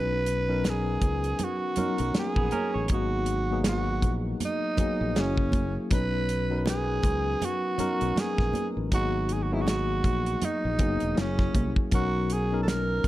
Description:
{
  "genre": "lush 1970s-style soul",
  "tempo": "80 BPM",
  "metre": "4/4",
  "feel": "swing 58% on 16ths",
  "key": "B major",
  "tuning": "A4 = 440 Hz",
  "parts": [
    { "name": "breathy tenor saxophone", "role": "melody", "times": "0.0-13.1 s", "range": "C#4 to B4", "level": "-30 LUFS", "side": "right 2 dB", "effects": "slapback echo" },
    { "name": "tine electric piano", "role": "accompaniment", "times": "0.0-13.1 s", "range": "F#3 to B4", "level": "-31 LUFS", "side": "left 3 dB", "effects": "overdrive, medium stereo tremolo" },
    { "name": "fingered electric bass", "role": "bass", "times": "0.0-13.1 s", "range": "E1 to C#2", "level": "-30 LUFS", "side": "equal", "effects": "none" },
    { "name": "damped 70s drum kit", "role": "drums", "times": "0.3-13.1 s", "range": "hi-hat, kick drum, snare drum", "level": "-28 LUFS", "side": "equal", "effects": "none" },
    { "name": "congas", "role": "percussion", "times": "0.6-13.1 s", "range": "none", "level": "-37 LUFS", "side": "right 4 dB", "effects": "none" },
    { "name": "semi-hollow electric guitar", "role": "riff", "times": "2.4-3.1 s", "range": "B3 to C#5", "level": "-34 LUFS", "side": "right 4 dB", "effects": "none" }
  ],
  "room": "light reverb",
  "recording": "none",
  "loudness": "-24 LUFS",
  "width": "side -15 dB against mid",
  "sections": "0.0-13.1 A section",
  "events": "none",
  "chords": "0.0 Bmaj9; 2.9 G#m9; 5.2 F#9; 5.9 Bmaj9; 8.9 G#m9; 11.2 F#9; 11.9 Bmaj9"
}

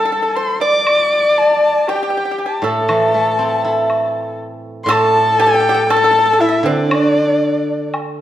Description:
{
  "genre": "chinese traditional, Chinese chamber ensemble",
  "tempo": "60 BPM",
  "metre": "2/4",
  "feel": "straight",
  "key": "unclear",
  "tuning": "A4 = 443 Hz",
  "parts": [
    { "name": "warm erhu", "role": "melody", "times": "0.0-7.9 s", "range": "D5 to D6", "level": "-17 LUFS", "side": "left 1 dB", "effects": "none" },
    { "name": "pipa", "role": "second line", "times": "0.0-7.9 s", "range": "D4 to D5", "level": "-21 LUFS", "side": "right 4 dB", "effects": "none" },
    { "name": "rich horsehead fiddle", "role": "second line", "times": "0.0-7.9 s", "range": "D4 to D5", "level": "-18 LUFS", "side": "left 3 dB", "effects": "none" },
    { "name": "steel-string zither", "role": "accompaniment", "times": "0.0-8.2 s", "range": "A2 to E4", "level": "-18 LUFS", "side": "right 2 dB", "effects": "none" },
    { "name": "woodblock", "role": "percussion", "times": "0.9-8.2 s", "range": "none", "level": "-25 LUFS", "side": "equal", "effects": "none" }
  ],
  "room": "wet recital hall reverb, RT60 1.4 s",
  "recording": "dark, warm production",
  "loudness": "-12 LUFS",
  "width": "side -12 dB against mid",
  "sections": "0.0-8.2 A section",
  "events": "none",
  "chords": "none"
}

